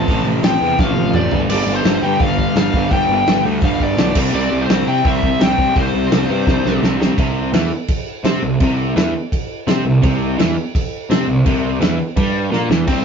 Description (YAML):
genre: punk rock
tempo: 169 BPM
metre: 4/4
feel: straight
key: C major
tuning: A4 = 440 Hz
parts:
  - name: high-gain lead guitar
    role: melody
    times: 0.0-6.8, 12.9-13.0 s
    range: C4 to A5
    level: -20 LUFS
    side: left 2 dB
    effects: distortion
  - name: distorted electric guitar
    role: riff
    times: 0.0-13.0 s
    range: F2 to C4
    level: -18 LUFS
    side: equal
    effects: distortion
  - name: fuzz picked electric bass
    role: bass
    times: 0.0-13.0 s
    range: G1 to C3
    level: -20 LUFS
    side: right 1 dB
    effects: overdrive
  - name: loose indie drum kit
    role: drums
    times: 0.1-13.0 s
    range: crash cymbal, hi-hat, kick drum, snare drum, toms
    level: -18 LUFS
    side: equal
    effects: none
room: moderate small room reverb, RT60 0.5 s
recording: rough rehearsal-room recording, nothing above 7.5 kHz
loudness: -14 LUFS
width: side -6 dB against mid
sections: 0.0-7.2 A section; 7.2-12.9 B section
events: drum fill 0.8-1.5, 6.5-7.2, 12.5-12.9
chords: 0.0 F/A; 1.3 G5; 4.2 C5; 7.2 C